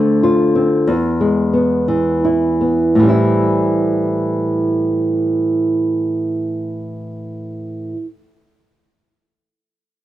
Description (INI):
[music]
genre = pop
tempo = 51-64 BPM (dotted quarters)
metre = 6/8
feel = straight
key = A minor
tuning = A4 = 440 Hz
[part]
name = nylon-string guitar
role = accompaniment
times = 0.0-8.1 s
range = E2 to F4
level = -14 LUFS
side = equal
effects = cassette tape
[sound]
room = light reverb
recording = home recording on cassette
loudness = -14 LUFS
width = side -13 dB against mid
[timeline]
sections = 0.0-3.0 A section; 3.0-7.7 B section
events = slowing down 0.0-3.0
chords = 0.0 Dm7; 0.9 E; 3.0 Am7